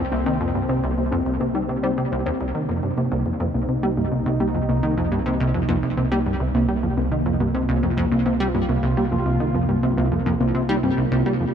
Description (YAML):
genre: ambient, sequencer-driven space music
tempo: 105 BPM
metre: 4/4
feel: straight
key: C minor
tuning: A4 = 439 Hz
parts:
  - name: sweeping resonant pad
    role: sustained chords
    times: 0.0-11.5 s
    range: C3 to F4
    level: -25 LUFS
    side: right 1 dB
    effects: chorus
  - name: plucky analog bass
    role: riff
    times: 0.0-11.4 s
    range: C2 to G3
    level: -23 LUFS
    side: equal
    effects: lush chorus, tape echo
  - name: warm sub bass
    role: bass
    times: 0.0-11.5 s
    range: C2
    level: -30 LUFS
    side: right 1 dB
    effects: tube saturation
  - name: warbly dusty pluck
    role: arpeggios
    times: 0.1-11.4 s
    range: Bb3 to C5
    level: -26 LUFS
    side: left 1 dB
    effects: chorus, auto-pan, tape echo
room: moderate huge ambient reverb, RT60 8.3 s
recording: none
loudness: -19 LUFS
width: side -8 dB against mid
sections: 0.0-11.5 A section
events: none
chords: 0.0 Cm7